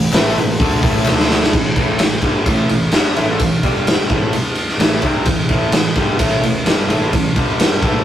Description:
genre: garage rock duo or trio.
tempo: 129 BPM.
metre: 4/4.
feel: straight.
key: unclear.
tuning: A4 = 440 Hz.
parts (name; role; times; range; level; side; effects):
raw garage guitar; riff; 0.0-8.0 s; G2 to D4; -18 LUFS; equal; overdrive, spring reverb.
fuzz picked electric bass; bass; 0.0-8.0 s; G1 to D2; -24 LUFS; equal; overdrive.
raw garage drum kit; drums; 0.1-7.9 s; crash cymbal, hi-hat, kick drum, ride cymbal, snare drum; -15 LUFS; equal; none.
group handclap; percussion; 0.1-1.2 s; none; -25 LUFS; left 3 dB; none.
room: light reverb.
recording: rough rehearsal-room recording, tube saturation.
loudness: -13 LUFS.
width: side -11 dB against mid.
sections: 0.0-1.5 A section; 1.5-8.0 B section.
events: drum fill 1.1-1.5.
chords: 0.0 A5; 1.1 D5; 1.5 A5; 3.6 G5; 4.1 A5; 7.4 G5.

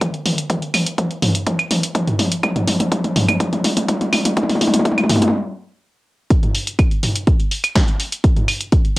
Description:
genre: techno.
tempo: 124 BPM.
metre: 4/4.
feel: straight.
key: none.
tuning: none.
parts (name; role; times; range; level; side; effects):
electronic kick drum; drums; 0.0-8.8 s; none; -16 LUFS; equal; high-pass filter on kick, cassette tape, high-pass filter on room.
punchy analog drum machine; drums; 0.0-9.0 s; claves, hi-hat, snare drum, toms; -17 LUFS; equal; sidechain pumping on hats, cassette tape, sidechain pumping on toms, sidechain pumping on perc.
room: wet studio ambience, RT60 0.5 s.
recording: home recording on cassette.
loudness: -15 LUFS.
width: side -20 dB against mid.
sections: 0.0-6.3 A section; 6.3-9.0 B section.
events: build-up 0.0-6.3; drum fill 0.0-5.3; stop 5.3-6.3; drop 6.3-9.0.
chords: none.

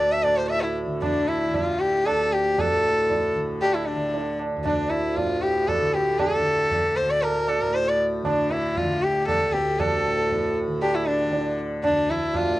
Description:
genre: indian classical, Hindustani.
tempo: 116 BPM.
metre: 7/4.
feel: straight.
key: unclear.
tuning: A4 = 441 Hz.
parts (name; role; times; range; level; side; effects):
clear sarangi; melody; 0.0-12.6 s; D4 to E5; -22 LUFS; left 1 dB; none.
tanpura; drone; 0.0-12.6 s; D2 to D3; -29 LUFS; right 1 dB; none.
tabla; percussion; 0.2-12.5 s; none; -28 LUFS; right 4 dB; none.
room: little or no reverb.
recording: dry, close 1970s-style studio recording.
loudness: -21 LUFS.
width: side -17 dB against mid.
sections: 0.0-12.6 A section.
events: none.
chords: none.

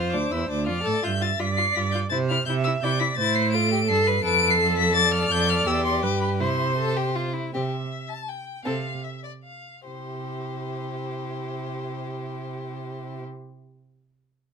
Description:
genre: quick classical-period movement for string quartet.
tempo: 137-171 BPM.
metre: 3/4.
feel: rubato.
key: C major.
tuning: A4 = 440 Hz.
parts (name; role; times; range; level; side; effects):
rich violin; melody; 0.0-13.2 s; C5 to D7; -26 LUFS; left 4 dB; none.
rich violin; second line; 0.0-13.2 s; D4 to B4; -29 LUFS; left 4 dB; none.
rich viola; accompaniment; 0.0-13.2 s; C4 to E5; -31 LUFS; right 3 dB; none.
rich cello; bass; 0.0-13.2 s; D2 to C3; -28 LUFS; right 4 dB; none.
room: little or no reverb.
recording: close, detailed microphones.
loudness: -22 LUFS.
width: side -6 dB against mid.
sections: 0.0-7.5 A section; 7.5-9.9 B section; 9.9-12.5 C section.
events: slowing down 7.0-9.9.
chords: 0.0 Dm; 1.0 G5; 2.1 C; 3.2 Am; 4.2 Dm/F; 5.7 C/E; 6.0 G; 6.4 C.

